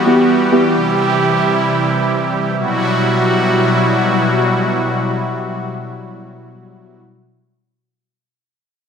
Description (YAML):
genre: pop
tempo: free time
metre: none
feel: none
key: E minor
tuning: A4 = 440 Hz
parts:
  - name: brassy analog pad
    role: sustained chords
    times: 0.0-7.0 s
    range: B2 to G4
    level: -14 LUFS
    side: equal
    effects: chorus
  - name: muted felt-like synth keys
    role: accompaniment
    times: 0.1-0.6 s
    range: B3 to G4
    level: -13 LUFS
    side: right 1 dB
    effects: chorus
room: moderate digital room reverb, RT60 1.3 s, digital ambience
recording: none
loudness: -13 LUFS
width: side -7 dB against mid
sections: 0.0-2.6 A section; 2.6-6.2 B section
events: none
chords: 0.0 Emadd9; 0.7 C; 2.6 Emadd9